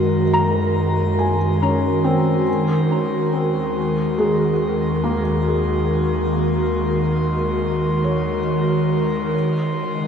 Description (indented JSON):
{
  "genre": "ambient",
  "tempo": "70 BPM",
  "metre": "4/4",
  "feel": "straight",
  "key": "unclear",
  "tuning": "A4 = 440 Hz",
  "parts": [
    { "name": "airy breathy pad", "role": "sustained chords", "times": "0.0-10.1 s", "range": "Db3 to Bb4", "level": "-19 LUFS", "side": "equal", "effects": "chorus, shimmer reverb" },
    { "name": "felt-muted upright piano", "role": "arpeggios", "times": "0.0-10.1 s", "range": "Ab3 to Bb5", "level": "-24 LUFS", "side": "left 1 dB", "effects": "ping-pong delay, shimmer reverb" },
    { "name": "deep rumbling drone", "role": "bass", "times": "0.0-10.1 s", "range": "Eb2 to Gb2", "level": "-27 LUFS", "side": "equal", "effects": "built-in reverb" },
    { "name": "glass harmonica", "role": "texture", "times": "0.0-10.1 s", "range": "C6", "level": "-32 LUFS", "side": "left 2 dB", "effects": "shimmer reverb" }
  ],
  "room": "wet cathedral reverb, RT60 5.0 s",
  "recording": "in a vast, echoing space",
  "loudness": "-17 LUFS",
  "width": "side -7 dB against mid",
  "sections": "0.0-10.1 A section",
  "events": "fade-in on glass harmonica 0.0-10.1",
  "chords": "0.0 Gb; 2.5 Ebm7; 9.3 Gb5"
}